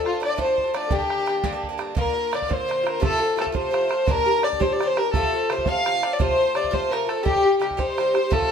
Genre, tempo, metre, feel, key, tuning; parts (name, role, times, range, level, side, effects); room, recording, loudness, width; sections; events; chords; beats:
celtic folk, Celtic jig; 114 BPM (dotted quarters); 6/8; straight; G minor; A4 = 443 Hz
dark fiddle; melody; 0.0-8.5 s; F4 to F5; -22 LUFS; left 1 dB
bright fiddle; second line; 0.0-8.5 s; F4 to F5; -29 LUFS; left 5 dB
Irish bouzouki; accompaniment; 0.0-8.5 s; G2 to G4; -27 LUFS; right 1 dB
bodhran; percussion; 0.1-8.5 s; -27 LUFS; right 3 dB
moderate studio reverb, RT60 0.5 s; minimal, uncompressed stereo recording; -20 LUFS; side -7 dB against mid
0.0-2.0 A section; 2.0-8.5 B section
0.0 Dm; 0.9 Gm; 2.0 Bb; 3.0 F; 4.1 Gm; 5.1 F; 7.3 Cm
0.39 | 0.92 1.44 | 1.97 2.50 | 3.03 3.55 | 4.08 4.61 | 5.14 5.67 | 6.19 6.72 | 7.25 7.78 | 8.31